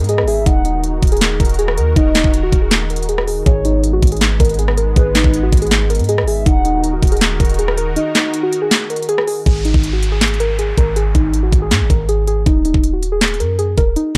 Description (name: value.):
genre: hip hop, trap.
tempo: 160 BPM.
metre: 4/4.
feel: half-time.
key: unclear.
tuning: A4 = 440 Hz.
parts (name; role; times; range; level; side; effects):
muted felt-like synth keys; melody; 0.0-14.2 s; D#4 to A#4; -21 LUFS; equal; chorus.
sweeping resonant pad; sustained chords; 0.0-9.4 s; D#3 to A#4; -30 LUFS; equal; chorus.
warm 808-style bass; bass; 0.0-14.2 s; D#1 to G#2; -20 LUFS; equal; none.
trap drum kit; drums; 0.0-14.2 s; handclaps, hi-hat, kick drum, rim click, snare drum; -18 LUFS; equal; overdrive.
downlifter; sound effects; 0.0-0.5, 9.5-12.5 s; none; -34 LUFS; equal; none.
hollow clarinet-like synth lead; second line; 0.1-8.3 s; B4 to F#5; -26 LUFS; equal; chorus, phaser, analog delay.
room: digital ambience.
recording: dry, gritty hardware recording.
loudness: -15 LUFS.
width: mono.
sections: 0.0-9.5 A section; 9.5-14.2 B section.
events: kick muted 8.0-9.5.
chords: 0.5 D#m; 3.5 G#m; 6.5 D#m; 9.5 N.C.; 12.5 D#m.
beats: 0.09 | 0.46 0.84 1.21 1.59 | 1.96 2.34 2.71 3.09 | 3.46 3.84 4.21 4.59 | 4.96 5.34 5.71 6.09 | 6.46 6.84 7.21 7.59 | 7.96 8.34 8.71 9.09 | 9.46 9.84 10.21 10.59 | 10.96 11.34 11.71 12.09 | 12.46 12.84 13.21 13.59 | 13.96.